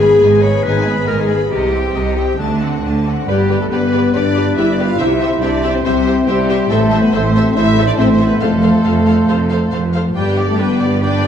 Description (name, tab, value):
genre	cinematic, heroic adventure film score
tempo	139 BPM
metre	4/4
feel	straight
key	G mixolydian from 3.3 s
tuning	A4 = 439 Hz
part	clear symphonic violin section	melody	0.0-11.3 s	D5 to Cb6	-28 LUFS	left 4 dB	none
part	clear clarinet	second line	0.0-11.3 s	D4 to Db5	-19 LUFS	left 2 dB	none
part	rich symphonic violin section	second line	0.0-11.3 s	D4 to F5	-25 LUFS	left 2 dB	none
part	rich symphonic viola section	accompaniment	0.0-11.3 s	G3 to D5	-24 LUFS	right 1 dB	none
part	concert harp	arpeggios	0.0-11.3 s	F2 to D#6	-25 LUFS	left 7 dB	none
part	rich symphonic cello section	bass	0.0-11.3 s	F2 to D3	-19 LUFS	right 2 dB	none
part	rich symphonic double bass section	bass	0.0-11.3 s	F1 to D2	-20 LUFS	right 3 dB	none
part	clear oboe	second line	3.3-11.3 s	B4 to D5	-26 LUFS	right 2 dB	none
part	flute section	second line	3.3-11.3 s	D5 to G5	-27 LUFS	right 3 dB	none
part	dark French horn section	sustained chords	3.3-11.3 s	G3 to F4	-16 LUFS	left 2 dB	none
room	moderate concert hall reverb, RT60 2.2 s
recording	small room reverb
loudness	-12 LUFS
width	side -8 dB against mid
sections	0.0-3.3 A section; 3.3-11.3 B section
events	none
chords	0.0 Abm; 1.5 Cm; 2.4 D7; 3.3 G; 5.0 C; 6.7 Am; 8.4 F; 10.2 G